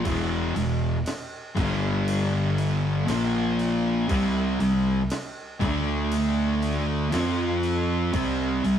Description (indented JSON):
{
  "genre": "stoner and doom metal",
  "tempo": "59 BPM",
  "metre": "4/4",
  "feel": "straight",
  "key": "unclear",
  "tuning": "A4 = 440 Hz",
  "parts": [
    { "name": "thick fuzz guitar", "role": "riff", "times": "0.0-8.8 s", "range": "E2 to F4", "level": "-25 LUFS", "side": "left 3 dB", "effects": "distortion" },
    { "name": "thick fuzz guitar", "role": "riff", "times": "0.0-8.8 s", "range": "E2 to F4", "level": "-28 LUFS", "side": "right 6 dB", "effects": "distortion" },
    { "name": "fuzz fingered electric bass", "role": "bass", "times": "0.1-8.8 s", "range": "E1 to F2", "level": "-30 LUFS", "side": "equal", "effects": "overdrive" },
    { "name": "breakbeat sampler-style drum kit", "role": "drums", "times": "0.1-8.8 s", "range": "kick drum, ride cymbal, snare drum", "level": "-34 LUFS", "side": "equal", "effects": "none" }
  ],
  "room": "moderate stone room reverb, RT60 1.3 s",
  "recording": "rough rehearsal-room recording",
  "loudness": "-22 LUFS",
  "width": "side -9 dB against mid",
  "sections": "0.0-8.8 A section",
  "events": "none",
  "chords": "0.1 E5; 1.6 G5; 3.1 A#5; 4.1 C5; 5.6 D5; 7.1 F5; 8.1 C5"
}